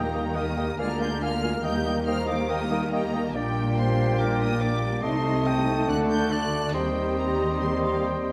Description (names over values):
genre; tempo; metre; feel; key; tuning
classical; 140 BPM; 4/4; rubato; G minor from 3.3 s; A4 = 442 Hz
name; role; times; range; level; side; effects
rich symphonic violin section; melody; 0.0-8.3 s; F5 to G6; -40 LUFS; equal; none
clear clarinet; second line; 0.0-8.3 s; Bb4 to G5; -36 LUFS; equal; none
warm symphonic violin section; second line; 0.0-8.3 s; G4 to Bb5; -40 LUFS; equal; none
mellow bassoon; accompaniment; 0.0-8.3 s; G3 to Bb3; -35 LUFS; equal; none
rich symphonic viola section; accompaniment; 0.0-8.3 s; G3 to G4; -35 LUFS; equal; none
mellow French horn section; sustained chords; 0.0-8.3 s; G3 to Eb4; -34 LUFS; equal; none
rich symphonic cello section; bass; 0.0-8.3 s; Bb2 to Eb3; -33 LUFS; equal; none
rich symphonic double bass section; bass; 0.0-8.3 s; Bb1 to Eb2; -32 LUFS; equal; none
clear oboe; second line; 0.1-8.3 s; D5 to F5; -38 LUFS; equal; none
concert flute; second line; 0.1-8.3 s; G5 to C6; -38 LUFS; equal; none
room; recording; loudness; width
wet scoring stage reverb, RT60 1.6 s; none; -25 LUFS; mono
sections
0.0-8.3 A section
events
none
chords
0.0 Eb; 0.8 Bb7/D; 1.6 Eb; 3.3 Gm/Bb; 5.0 Adim/C; 5.9 D; 6.7 Cm/Eb